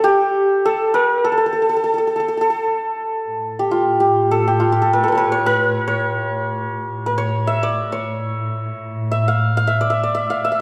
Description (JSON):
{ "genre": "Persian modal ensemble", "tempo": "103 BPM", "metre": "3/4", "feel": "straight", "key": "A dastgah homayun", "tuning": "A4 = 441 Hz", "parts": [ { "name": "santur", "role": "melody", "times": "0.0-10.6 s", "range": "F4 to F5", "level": "-20 LUFS", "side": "equal", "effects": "none" }, { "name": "barky tine electric piano", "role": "second line", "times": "0.0-2.7 s", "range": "G4 to Bb4+45c", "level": "-22 LUFS", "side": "equal", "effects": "phaser" }, { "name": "dark studio cello section", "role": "drone", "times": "3.3-10.6 s", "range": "A2", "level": "-26 LUFS", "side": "equal", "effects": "none" } ], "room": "wet scoring stage reverb, RT60 1.6 s", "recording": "recorded in a church or concert hall", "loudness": "-19 LUFS", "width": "mono", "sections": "0.0-3.3 A section; 3.3-10.6 B section", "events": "none", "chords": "none" }